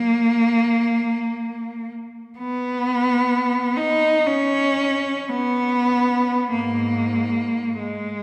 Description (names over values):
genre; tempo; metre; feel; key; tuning
classical, free, expressive piece for unaccompanied cello; free time; none; none; unclear; A4 = 441 Hz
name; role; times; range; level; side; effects
rich cello; solo; 0.0-8.2 s; G#2 to D#4; -21 LUFS; equal; none
room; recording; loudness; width
wet church reverb, RT60 2.8 s; recorded in a church or concert hall; -21 LUFS; mono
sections
0.0-8.2 A section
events
none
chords
none